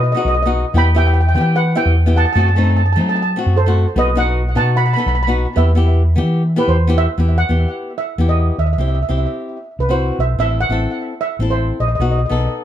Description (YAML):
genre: calypso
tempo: 149 BPM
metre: 4/4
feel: straight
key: E harmonic minor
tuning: A4 = 438 Hz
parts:
  - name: steel pan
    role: melody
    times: 0.0-12.5 s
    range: A4 to B5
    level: -20 LUFS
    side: right 3 dB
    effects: digital delay
  - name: hollow-body short-scale fingered electric bass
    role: bass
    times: 0.0-12.5 s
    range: A1 to F#3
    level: -15 LUFS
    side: equal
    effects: none
  - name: flamenco guitar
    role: accompaniment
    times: 0.1-12.6 s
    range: A3 to A4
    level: -22 LUFS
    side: left 4 dB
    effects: none
room: light reverb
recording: dark, warm production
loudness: -14 LUFS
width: side -11 dB against mid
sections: 0.0-7.2 A section; 7.2-12.6 B section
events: none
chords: 0.0 B; 0.8 Em; 2.4 F#dim; 4.0 B; 5.6 Em; 7.2 Emadd9; 8.8 C; 10.4 Am; 12.0 B7